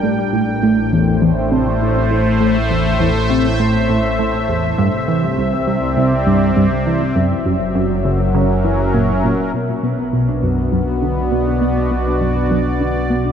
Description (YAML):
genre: ambient, sequencer-driven space music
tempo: 101 BPM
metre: 4/4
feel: straight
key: B minor from 9.5 s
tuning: A4 = 441 Hz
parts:
  - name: sweeping resonant pad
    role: sustained chords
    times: 0.0-13.3 s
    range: A2 to G5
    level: -17 LUFS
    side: equal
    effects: chorus
  - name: tight sequenced synth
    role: riff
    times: 0.0-13.3 s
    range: C2 to E3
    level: -18 LUFS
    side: equal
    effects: chorus, phaser, vintage 12-bit sampler grit, ping-pong delay
  - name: analog drone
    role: bass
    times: 0.0-13.3 s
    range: F#1 to C2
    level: -23 LUFS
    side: equal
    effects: chorus
  - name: concert harp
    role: arpeggios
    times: 9.5-13.3 s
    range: B3 to B4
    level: -26 LUFS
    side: left 4 dB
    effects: auto-pan, ping-pong delay
room: moderate huge ambient reverb, RT60 8.7 s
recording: dark, warm production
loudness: -14 LUFS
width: side -8 dB against mid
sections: 0.0-9.5 A section; 9.5-13.3 B section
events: none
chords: 0.0 Am; 4.8 Cadd9; 7.2 F#7; 9.5 Bm